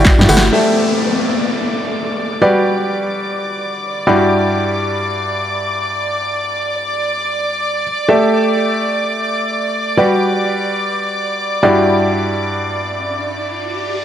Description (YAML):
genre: piano house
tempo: free time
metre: none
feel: none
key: E minor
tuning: A4 = 442 Hz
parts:
  - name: dark studio violin section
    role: sustained chords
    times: 0.0-14.0 s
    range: D5 to D6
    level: -20 LUFS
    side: equal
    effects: sidechain pumping
  - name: warm concert grand piano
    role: riff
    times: 0.0-14.0 s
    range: G2 to F#5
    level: -16 LUFS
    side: equal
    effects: sidechain pumping, low-pass filter, tape echo
  - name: organ-like FM bass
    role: bass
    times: 0.0-0.5 s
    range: G1 to G2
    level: -14 LUFS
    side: equal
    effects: sidechain pumping
  - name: house drum kit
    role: drums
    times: 0.1-0.5 s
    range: handclaps, hi-hat, snare drum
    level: -16 LUFS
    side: equal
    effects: low-pass filter on snare, studio reverb, low-pass filter on hats
  - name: tambourine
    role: percussion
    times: 0.1-0.5 s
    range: none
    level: -29 LUFS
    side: equal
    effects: none
  - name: downlifter and riser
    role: sound effects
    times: 0.5-4.3, 12.8-14.0 s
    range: none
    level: -22 LUFS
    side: left 1 dB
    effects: none
room: moderate lush hall reverb, RT60 1.8 s, studio ambience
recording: dry, gritty hardware recording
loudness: -14 LUFS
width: side -10 dB against mid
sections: 0.5-14.0 A section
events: drum fill 0.1-0.5; band accent 0.4; riser 12.8-14.0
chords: 0.0 Em9/G; 0.5 A7sus4; 2.4 Gmaj7; 4.1 Em9/G; 8.1 A7sus4; 10.0 Gmaj7; 11.6 Em9/G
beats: free time